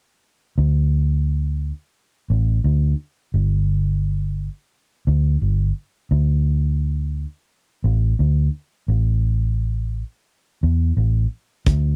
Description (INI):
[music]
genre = straight-eighth soul blues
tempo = 87 BPM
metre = 4/4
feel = swing 55% on 16ths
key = unclear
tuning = A4 = 440 Hz
[part]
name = vintage muted fingered electric bass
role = bass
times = 0.6-11.9 s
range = G1 to E2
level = -20 LUFS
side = equal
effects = none
[part]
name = warm soul drum kit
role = drums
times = 11.7-11.8 s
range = hi-hat, kick drum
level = -19 LUFS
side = equal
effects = none
[sound]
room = little or no reverb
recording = dry, close 1970s-style studio recording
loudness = -21 LUFS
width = mono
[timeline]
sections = 0.6-11.7 A section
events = none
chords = none